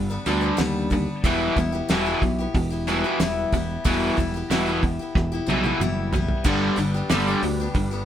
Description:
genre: folk rock and heartland rock.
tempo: 92 BPM.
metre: 4/4.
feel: straight.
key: G major.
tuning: A4 = 440 Hz.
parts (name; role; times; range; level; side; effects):
picked steel-string acoustic guitar; accompaniment; 0.0-8.1 s; G2 to B4; -28 LUFS; left 3 dB; none.
overdriven electric guitar; riff; 0.0-8.1 s; E2 to G3; -25 LUFS; equal; none.
modern bright fingered electric bass; bass; 0.0-8.1 s; E1 to Eb2; -27 LUFS; equal; none.
cloth-damped thuddy drum kit; drums; 0.3-7.9 s; crash cymbal, hi-hat, kick drum, snare drum, toms; -26 LUFS; right 1 dB; none.
tonewheel organ; sustained chords; 6.5-8.1 s; D4 to B4; -36 LUFS; equal; none.
room: moderate studio reverb, RT60 0.6 s.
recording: band playing live in one room.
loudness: -20 LUFS.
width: side -10 dB against mid.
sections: 0.0-6.5 A section; 6.5-8.1 B section.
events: drum fill 5.2-6.5.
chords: 0.0 G; 1.2 Em; 6.5 G.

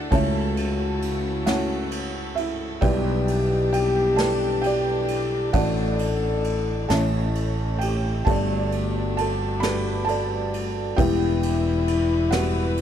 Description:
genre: acoustic folk-pop ballad.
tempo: 44 BPM (dotted quarters).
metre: 6/8.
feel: straight.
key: unclear.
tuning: A4 = 441 Hz.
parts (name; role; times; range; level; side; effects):
felt-muted upright piano; melody; 0.0-12.8 s; G1 to B5; -26 LUFS; right 2 dB; none.
dark French horn; second line; 0.0-12.8 s; E4 to A4; -27 LUFS; left 4 dB; none.
warm chamber string section; sustained chords; 0.0-12.8 s; C#3 to B4; -34 LUFS; left 1 dB; none.
sustaining fretless electric bass; bass; 0.0-12.8 s; E1 to C#2; -26 LUFS; equal; none.
soft brush drum kit; drums; 0.1-12.8 s; kick drum, ride cymbal, snare drum; -30 LUFS; equal; none.
room: little or no reverb.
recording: dark, warm production.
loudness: -21 LUFS.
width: side -9 dB against mid.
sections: 0.0-12.8 A section.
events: none.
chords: 0.1 A/C#; 2.8 Em7/B; 5.5 Asus4; 6.9 A; 8.3 Gsus2; 11.0 Em.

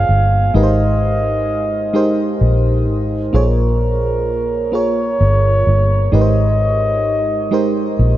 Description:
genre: slow six-eight R&B.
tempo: 43 BPM (dotted quarters).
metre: 6/8.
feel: straight.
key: Ab major.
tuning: A4 = 442 Hz.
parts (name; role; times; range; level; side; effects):
breathy flugelhorn; melody; 0.0-8.0 s; Bb4 to F5; -19 LUFS; right 1 dB; diffuse ambient delay.
mellow FM electric piano; accompaniment; 0.0-8.2 s; Ab3 to Db5; -19 LUFS; right 1 dB; chorus.
vintage muted fingered electric bass; bass; 0.0-8.2 s; G1 to Bb1; -16 LUFS; equal; none.
room: moderate huge ambient reverb, RT60 7.7 s.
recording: dreamy mix soaked in reverb.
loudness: -13 LUFS.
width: side -13 dB against mid.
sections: 0.0-8.2 A section.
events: none.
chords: 0.0 Bbm7; 0.5 Abmaj9; 3.3 Bbm7; 6.1 Abmaj9.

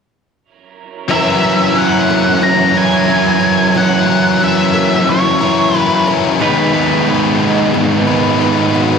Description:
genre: rock.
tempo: 90 BPM.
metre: 4/4.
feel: straight.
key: F# mixolydian.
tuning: A4 = 440 Hz.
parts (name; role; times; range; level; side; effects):
octave-fuzz lead guitar; melody; 1.1-6.1 s; C#5 to A#5; -15 LUFS; equal; distortion, diffuse ambient delay.
fingerpicked twelve-string acoustic guitar; arpeggios; 1.1-9.0 s; D#3 to F#4; -21 LUFS; equal; analog chorus, diffuse ambient delay.
biting overdriven guitar; riff; 1.1-9.0 s; G#2 to B4; -14 LUFS; left 8 dB; wide subtle chorus.
overdriven electric guitar; riff; 1.1-9.0 s; G#2 to B4; -16 LUFS; right 8 dB; reverse reverb.
room: moderate plate reverb, RT60 2.3 s.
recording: dreamy mix soaked in reverb.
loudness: -10 LUFS.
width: side -6 dB against mid.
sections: 1.1-9.0 A section.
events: none.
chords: 1.1 F#7; 6.4 G#m.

